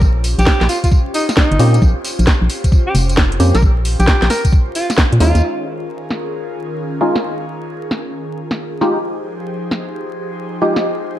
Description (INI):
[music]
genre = UK garage, two-step garage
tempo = 133 BPM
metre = 4/4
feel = swing 65% on 16ths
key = Bb dorian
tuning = A4 = 441 Hz
[part]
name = airy breathy pad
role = sustained chords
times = 0.0-11.2 s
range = Eb3 to C5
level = -26 LUFS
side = equal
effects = chorus, phaser, sidechain pumping
[part]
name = organ-like FM bass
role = bass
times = 0.0-5.4 s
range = F1 to Bb2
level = -13 LUFS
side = equal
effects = none
[part]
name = electronic kick drum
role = drums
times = 0.0-5.1 s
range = none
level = -12 LUFS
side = equal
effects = studio reverb
[part]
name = garage drum kit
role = drums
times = 0.0-10.8 s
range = hi-hat, snare drum, tambourine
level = -19 LUFS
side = equal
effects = low-pass filter on snare, studio reverb, low-pass filter on perc, low-pass filter on hats
[part]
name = warm alto saxophone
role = melody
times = 0.4-5.4 s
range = Eb4 to Bb4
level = -21 LUFS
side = equal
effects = tape echo
[part]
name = percussive organ stab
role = stabs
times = 1.6-10.8 s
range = Ab3 to G4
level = -18 LUFS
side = equal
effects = ensemble chorus, tape echo
[sound]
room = light reverb, digital ambience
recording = dark, warm production, vinyl crackle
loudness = -13 LUFS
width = side -13 dB against mid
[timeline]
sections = 0.0-5.4 A section; 5.4-11.2 B section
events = none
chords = 0.0 Bbm69; 5.4 Eb9sus4; 8.8 Fm9